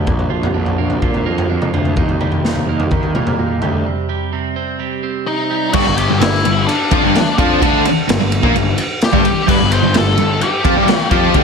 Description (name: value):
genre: quiet-loud alternative rock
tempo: 128 BPM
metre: 4/4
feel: straight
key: unclear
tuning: A4 = 440 Hz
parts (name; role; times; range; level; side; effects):
- twelve-string electric guitar; arpeggios; 0.0-5.7 s; Bb2 to C4; -22 LUFS; right 6 dB; phaser
- fuzz picked electric bass; bass; 0.0-11.4 s; G1 to Eb3; -20 LUFS; left 1 dB; overdrive
- raw garage drum kit; drums; 0.1-11.4 s; crash cymbal, kick drum, ride cymbal, snare drum, toms; -18 LUFS; equal; none
- octave-fuzz lead guitar; melody; 5.3-11.4 s; D4 to C6; -18 LUFS; left 4 dB; distortion, slapback echo
- distorted electric guitar; riff; 5.7-11.4 s; G2 to F4; -20 LUFS; left 1 dB; overdrive
- thick fuzz guitar; riff; 5.7-11.4 s; G2 to F4; -20 LUFS; left 9 dB; distortion
- thick fuzz guitar; riff; 5.7-11.4 s; G2 to F4; -19 LUFS; right 8 dB; distortion, slapback echo
room: moderate recital hall reverb, RT60 1.3 s, studio reverb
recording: big arena sound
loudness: -13 LUFS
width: side -5 dB against mid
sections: 0.0-5.7 A section; 5.7-11.4 B section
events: break 3.9-5.7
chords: 0.1 Bb; 2.0 Eb; 3.9 Cm; 5.7 G5